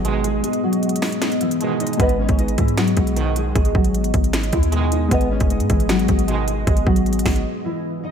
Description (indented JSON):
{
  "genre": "hip hop, trap",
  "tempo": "154 BPM",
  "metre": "4/4",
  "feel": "half-time",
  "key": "G# minor",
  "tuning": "A4 = 442 Hz",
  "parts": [
    { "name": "nylon-string guitar", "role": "melody", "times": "0.0-8.1 s", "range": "E3 to D#5", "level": "-24 LUFS", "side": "left 1 dB", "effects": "ensemble chorus, low-pass filter, analog delay" },
    { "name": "dark concert grand piano", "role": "accompaniment", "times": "0.0-8.1 s", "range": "G#3 to D#5", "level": "-30 LUFS", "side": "left 2 dB", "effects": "low-pass filter" },
    { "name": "deep dark ambient pad", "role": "sustained chords", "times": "0.0-8.1 s", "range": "G#3 to D#5", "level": "-24 LUFS", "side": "left 1 dB", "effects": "chorus, built-in reverb" },
    { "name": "warm brass ensemble", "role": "stabs", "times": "0.0-6.7 s", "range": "G#2 to G#3", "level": "-28 LUFS", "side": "right 8 dB", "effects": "analog delay" },
    { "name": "clean 808-style bass", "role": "bass", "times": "0.0-7.4 s", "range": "F#1 to G#2", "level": "-22 LUFS", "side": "equal", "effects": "none" },
    { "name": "trap drum kit", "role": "drums", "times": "0.0-7.4 s", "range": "finger snaps, hi-hat, kick drum, snare drum", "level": "-21 LUFS", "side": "equal", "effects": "none" }
  ],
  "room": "light reverb, studio ambience",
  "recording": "none",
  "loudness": "-17 LUFS",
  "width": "side -8 dB against mid",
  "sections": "0.0-8.1 A section",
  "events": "kick muted 0.4-2.0; break 7.5-8.1",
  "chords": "0.0 G#m"
}